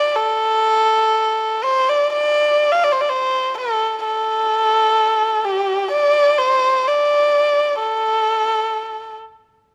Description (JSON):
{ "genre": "chinese traditional", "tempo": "64 BPM", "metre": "4/4", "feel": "rubato", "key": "unclear", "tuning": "A4 = 440 Hz", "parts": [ { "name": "warm erhu", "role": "solo", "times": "0.0-9.2 s", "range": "G4 to F5", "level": "-18 LUFS", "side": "equal", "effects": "none" } ], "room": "light reverb", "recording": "close, detailed microphones", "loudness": "-17 LUFS", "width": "mono", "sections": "0.0-9.7 A section", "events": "none", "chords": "none" }